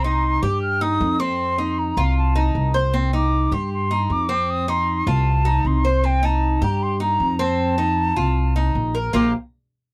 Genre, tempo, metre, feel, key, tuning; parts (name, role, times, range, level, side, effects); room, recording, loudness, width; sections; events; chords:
latin, Cuban son and guajira; 155 BPM; 4/4; straight; A4 = 442 Hz
concert flute; melody; 0.0-9.3 s; G5 to F6; -26 LUFS; equal
Cuban tres; arpeggios; 0.0-9.3 s; Bb3 to C5; -26 LUFS; equal
upright bass; bass; 0.0-9.3 s; Bb1 to G2; -23 LUFS; equal
little or no reverb; dry, close 1970s-style studio recording; -20 LUFS; mono
0.0-9.1 A section
0.0 Cm; 1.4 F7; 2.9 Cm; 4.5 F7; 6.0 Cm7; 7.6 F7; 9.1 Bb5